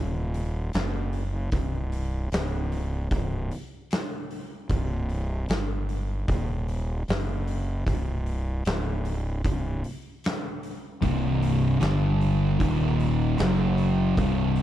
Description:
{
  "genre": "stoner and doom metal",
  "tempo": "76 BPM",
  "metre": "4/4",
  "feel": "straight",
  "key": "unclear",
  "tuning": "A4 = 438 Hz",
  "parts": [
    { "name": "fuzz fingered electric bass", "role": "bass", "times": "0.0-14.6 s", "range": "C1 to G1", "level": "-28 LUFS", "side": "equal", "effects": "overdrive" },
    { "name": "oversized low-tuned drum kit", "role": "drums", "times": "0.3-14.6 s", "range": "hi-hat, kick drum, snare drum", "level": "-31 LUFS", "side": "equal", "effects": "none" },
    { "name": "thick fuzz guitar", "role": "riff", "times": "11.0-14.6 s", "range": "C2 to G3", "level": "-24 LUFS", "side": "left 5 dB", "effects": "distortion" },
    { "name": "thick fuzz guitar", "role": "riff", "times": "11.0-14.6 s", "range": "C2 to G3", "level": "-26 LUFS", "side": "right 8 dB", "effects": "distortion" }
  ],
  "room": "studio reverb",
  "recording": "none",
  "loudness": "-24 LUFS",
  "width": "side -12 dB against mid",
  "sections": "0.0-14.6 A section",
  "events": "none",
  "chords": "0.0 N.C.; 9.4 C5; 11.8 G5; 12.6 Eb5; 13.4 F#5",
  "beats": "0.73 | 1.52 2.31 3.11 3.90 | 4.69 5.49 6.28 7.07 | 7.86 8.65 9.44 10.23 | 11.02 11.81 12.60 13.39 | 14.18"
}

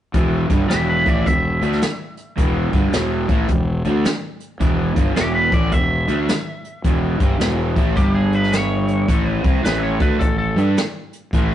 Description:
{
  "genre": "blues rock power trio and southern rock",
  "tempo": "107 BPM",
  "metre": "4/4",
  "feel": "swing 64% on 8ths",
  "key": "unclear",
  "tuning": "A4 = 441 Hz",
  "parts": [
    { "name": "crunchy overdriven guitar", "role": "riff", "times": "0.1-11.5 s", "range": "E2 to G4", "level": "-22 LUFS", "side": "right 1 dB", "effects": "none" },
    { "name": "fuzz fingered electric bass", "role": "bass", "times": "0.1-11.5 s", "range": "E1 to G2", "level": "-21 LUFS", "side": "equal", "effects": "overdrive" },
    { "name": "jazz brush drum kit", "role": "drums", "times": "0.1-11.5 s", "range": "hi-hat, kick drum, snare drum", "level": "-20 LUFS", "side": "equal", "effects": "none" },
    { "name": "lightly driven lead guitar", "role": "melody", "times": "0.7-10.7 s", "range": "G4 to E5", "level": "-23 LUFS", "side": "equal", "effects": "slapback echo" }
  ],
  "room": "moderate stone room reverb, RT60 1.0 s",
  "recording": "rough rehearsal-room recording, warm saturation, nothing above 10.6 kHz",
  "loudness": "-16 LUFS",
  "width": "side -11 dB against mid",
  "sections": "0.1-11.5 A section",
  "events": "none",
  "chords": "0.1 E5; 8.0 G5; 9.1 A7",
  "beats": "| 0.15 0.70 1.26 1.82 | 2.38 2.94 3.49 4.05 | 4.61 5.17 5.73 6.29 | 6.85 7.41 7.97 8.53 | 9.09 9.65 10.21 10.77 | 11.33"
}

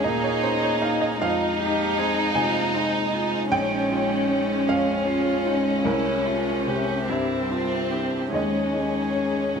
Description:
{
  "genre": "neoclassical piano and strings",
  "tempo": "47-52 BPM (dotted quarters)",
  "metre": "6/8",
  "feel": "rubato",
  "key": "F minor",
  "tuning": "A4 = 441 Hz",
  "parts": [
    { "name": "warm chamber violin section", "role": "melody", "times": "0.0-9.6 s", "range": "C4 to Eb4", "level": "-24 LUFS", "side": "left 1 dB", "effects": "none" },
    { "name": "warm cello", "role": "second line", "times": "0.0-9.6 s", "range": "Db4 to Ab4", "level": "-30 LUFS", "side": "right 4 dB", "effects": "none" },
    { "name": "clear upright piano", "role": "accompaniment", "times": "0.0-9.6 s", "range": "Bb1 to Ab5", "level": "-27 LUFS", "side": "right 1 dB", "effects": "none" },
    { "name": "warm viola", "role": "accompaniment", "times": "0.0-9.6 s", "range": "G3 to Bb3", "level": "-31 LUFS", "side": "left 2 dB", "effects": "none" },
    { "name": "hollow soft pad", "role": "sustained chords", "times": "0.0-9.6 s", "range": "Ab3 to E5", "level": "-35 LUFS", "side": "left 1 dB", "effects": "none" }
  ],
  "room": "moderate recital hall reverb, RT60 1.5 s",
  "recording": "close, detailed microphones",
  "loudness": "-21 LUFS",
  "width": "side -6 dB against mid",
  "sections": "0.0-9.6 A section",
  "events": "none",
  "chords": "0.0 Eb7sus4; 1.2 Fm7; 3.5 Bbm7; 5.8 C7; 8.3 Eb7sus4",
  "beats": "0.04 | 1.20 2.36 | 3.52 4.68 | 5.85 7.10 | 8.34 9.60"
}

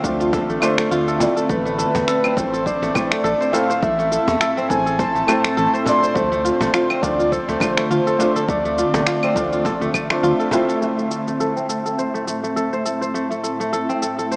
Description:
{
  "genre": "organic downtempo",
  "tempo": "103 BPM",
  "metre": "4/4",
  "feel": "swing 56% on 16ths",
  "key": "A minor",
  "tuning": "A4 = 443 Hz",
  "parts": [
    { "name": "breathy flute-like synth lead", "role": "melody", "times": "0.0-10.2 s", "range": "B4 to C6", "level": "-21 LUFS", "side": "equal", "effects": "lush chorus, tape echo, shimmer reverb" },
    { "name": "felt-muted upright piano", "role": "accompaniment", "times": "0.0-14.4 s", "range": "A3 to D5", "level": "-24 LUFS", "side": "equal", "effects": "sidechain pumping, tape echo, shimmer reverb" },
    { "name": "ethereal airy pad", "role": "sustained chords", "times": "0.0-14.4 s", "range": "A2 to E5", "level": "-27 LUFS", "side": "equal", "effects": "ensemble chorus, built-in reverb, sidechain pumping, shimmer reverb" },
    { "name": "kora", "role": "arpeggios", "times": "0.0-14.4 s", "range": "A3 to C5", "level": "-22 LUFS", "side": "equal", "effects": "low-pass filter, tape echo, shimmer reverb" },
    { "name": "smooth synth bass", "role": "bass", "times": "0.0-10.3 s", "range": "A1 to E2", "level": "-28 LUFS", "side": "equal", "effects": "sidechain pumping" },
    { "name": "electronic kick drum", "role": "drums", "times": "0.0-10.1 s", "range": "none", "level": "-27 LUFS", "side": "equal", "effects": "overdrive" },
    { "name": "electronic shaker, claves and finger snaps", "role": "drums", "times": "0.0-14.4 s", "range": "none", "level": "-25 LUFS", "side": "equal", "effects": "overdrive" },
    { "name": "cajon", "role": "percussion", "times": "0.0-10.7 s", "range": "none", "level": "-28 LUFS", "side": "equal", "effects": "none" }
  ],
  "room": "moderate huge ambient reverb, RT60 5.3 s",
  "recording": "small speaker sound",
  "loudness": "-16 LUFS",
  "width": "side -39 dB against mid",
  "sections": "0.0-10.8 A section; 10.8-14.4 B section",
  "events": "filter sweep on kora 10.8-14.4; filter sweep on ambient pad 10.8-14.4",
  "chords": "0.0 Am",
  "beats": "0.33 0.91 | 1.49 2.08 2.66 3.24 | 3.82 4.41 4.99 5.57 | 6.16 6.74 7.32 7.90 | 8.48 9.07 9.65 10.23 | 10.81 11.40 11.98 12.56 | 13.14 13.73 14.31"
}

